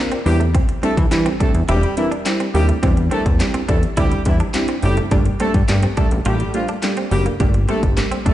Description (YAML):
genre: dance-pop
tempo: 105 BPM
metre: 4/4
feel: straight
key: unclear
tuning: A4 = 440 Hz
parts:
  - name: wavetable chord stab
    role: accompaniment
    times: 0.0-8.3 s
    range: G3 to Bb4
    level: -22 LUFS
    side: right 1 dB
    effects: sidechain pumping
  - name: direct-recorded clean electric guitar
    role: riff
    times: 0.1-8.3 s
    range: A3 to F4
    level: -28 LUFS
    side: right 3 dB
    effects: wide subtle chorus
  - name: house drum kit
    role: drums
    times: 0.1-8.3 s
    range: handclaps, hi-hat, kick drum, snare drum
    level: -20 LUFS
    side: equal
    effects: none
  - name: clear horn section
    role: melody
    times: 0.3-8.3 s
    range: E3 to A4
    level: -26 LUFS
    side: equal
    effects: dub echo
  - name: plucky analog bass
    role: bass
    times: 0.3-8.3 s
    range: E1 to E3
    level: -17 LUFS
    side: equal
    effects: sidechain pumping
  - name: group handclap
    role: percussion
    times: 1.1-8.1 s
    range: none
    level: -34 LUFS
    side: left 5 dB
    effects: none
room: light reverb, digital ambience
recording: played on a big sound system in a bare room, stone room reverb, nothing above 11.0 kHz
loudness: -15 LUFS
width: side -13 dB against mid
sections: 0.0-8.3 A section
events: none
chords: 0.3 Cadd9/E; 5.1 Gmadd9